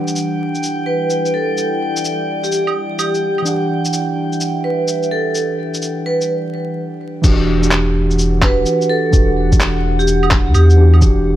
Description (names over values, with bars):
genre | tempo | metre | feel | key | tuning
future garage | 127 BPM | 4/4 | swing 66% on 16ths | E minor | A4 = 440 Hz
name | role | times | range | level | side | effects
muted felt-like synth keys | accompaniment | 0.0-11.4 s | E3 to F#5 | -20 LUFS | right 1 dB | chorus, vintage 12-bit sampler grit, sidechain pumping, analog delay
warbly tape-like pad | sustained chords | 0.0-11.4 s | E3 to F#5 | -26 LUFS | left 1 dB | chorus, built-in reverb, phaser, vintage 12-bit sampler grit, sidechain pumping
drifting glass-harmonics texture | texture | 0.0-6.3 s | G5 | -26 LUFS | left 1 dB | chorus, built-in reverb
lo-fi sampler-style drum kit | drums | 0.1-11.1 s | claves, crash cymbal, handclaps, shaker | -21 LUFS | equal | none
vibraphone with hard mallets | melody | 0.9-10.9 s | G4 to B4 | -20 LUFS | right 1 dB | tape echo
warm sub bass | bass | 7.2-11.4 s | E1 to E2 | -14 LUFS | equal | tube saturation, sidechain pumping
electronic kick drum | drums | 7.2-11.1 s | none | -13 LUFS | equal | none
room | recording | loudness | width
light reverb | vinyl crackle | -13 LUFS | side -13 dB against mid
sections
0.0-7.2 A section; 7.2-11.4 B section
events
filter sweep on ambient pad 0.0-7.2; break 6.3-7.2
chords
0.0 Em9